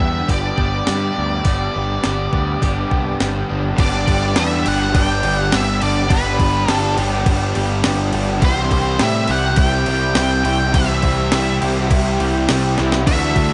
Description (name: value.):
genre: rock, shoegaze and dream pop.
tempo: 104 BPM.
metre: 4/4.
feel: straight.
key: unclear.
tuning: A4 = 440 Hz.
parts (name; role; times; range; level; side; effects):
octave-fuzz lead guitar; melody; 0.0-13.5 s; B4 to G5; -24 LUFS; equal; distortion, slapback echo.
electric guitar through a small old amp; arpeggios; 0.0-13.5 s; E3 to G4; -30 LUFS; equal; none.
overdriven electric guitar; riff; 0.0-13.5 s; G2 to G4; -27 LUFS; equal; ensemble chorus.
overdriven semi-hollow guitar; riff; 0.0-13.5 s; G2 to F#4; -27 LUFS; equal; reverse reverb.
growling picked electric bass; bass; 0.0-13.5 s; G1 to A2; -24 LUFS; equal; overdrive.
clean 12-bit digital drum machine; drums; 0.3-13.5 s; crash cymbal, hi-hat, kick drum, snare drum; -22 LUFS; equal; none.
distorted electric guitar; riff; 3.8-13.5 s; G2 to F#4; -28 LUFS; equal; overdrive.
room: light reverb, digital ambience.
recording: nothing above 10.4 kHz.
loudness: -17 LUFS.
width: mono.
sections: 0.0-3.8 A section; 3.8-13.5 B section.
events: drum fill 12.8.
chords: 0.0 G; 8.4 C.